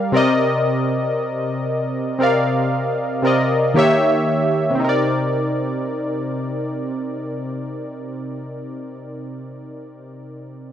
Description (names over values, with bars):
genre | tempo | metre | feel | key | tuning
R&B | 58 BPM | 4/4 | straight | C minor | A4 = 440 Hz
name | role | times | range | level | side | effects
warm analog keys | accompaniment | 0.0-10.7 s | C3 to F5 | -18 LUFS | equal | chorus
room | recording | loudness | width
light reverb | dark, warm production | -17 LUFS | side -10 dB against mid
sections
0.0-4.8 A section; 4.8-8.9 B section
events
none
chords
0.1 Cm7; 3.8 Eb7b9; 4.8 Cm7